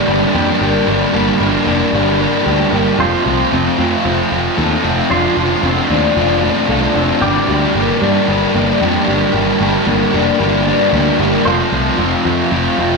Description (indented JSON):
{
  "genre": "rock",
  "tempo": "113 BPM",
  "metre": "4/4",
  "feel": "straight",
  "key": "G minor",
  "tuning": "A4 = 439 Hz",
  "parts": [
    { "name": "pedal steel guitar", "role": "sustained chords", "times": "0.0-13.0 s", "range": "G4 to D6", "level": "-23 LUFS", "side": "right 2 dB", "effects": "none" },
    { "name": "electric guitar through a small old amp", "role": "arpeggios", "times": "0.0-13.0 s", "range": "F3 to A4", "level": "-19 LUFS", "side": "left 4 dB", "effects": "analog chorus, tape echo, slapback echo" },
    { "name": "thick fuzz guitar", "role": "riff", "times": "0.0-13.0 s", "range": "F3 to G4", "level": "-14 LUFS", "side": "right 1 dB", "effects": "distortion" },
    { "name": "growling fingered electric bass", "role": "bass", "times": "0.1-12.9 s", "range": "F1 to G2", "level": "-20 LUFS", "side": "equal", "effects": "overdrive" }
  ],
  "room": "wet scoring stage reverb, RT60 1.9 s, digital ambience",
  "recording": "big arena sound, small room ambience",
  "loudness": "-12 LUFS",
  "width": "side -3 dB against mid",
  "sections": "0.0-13.0 A section",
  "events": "none",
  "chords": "0.0 Gm; 3.0 F; 5.1 Dm7/F; 7.2 Gm; 11.5 F",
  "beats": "0.34 | 0.87 1.40 1.93 2.46 | 2.99 3.52 4.05 4.58 | 5.11 5.64 6.17 6.69 | 7.22 7.75 8.28 8.81 | 9.34 9.87 10.40 10.93 | 11.46 11.99 12.52"
}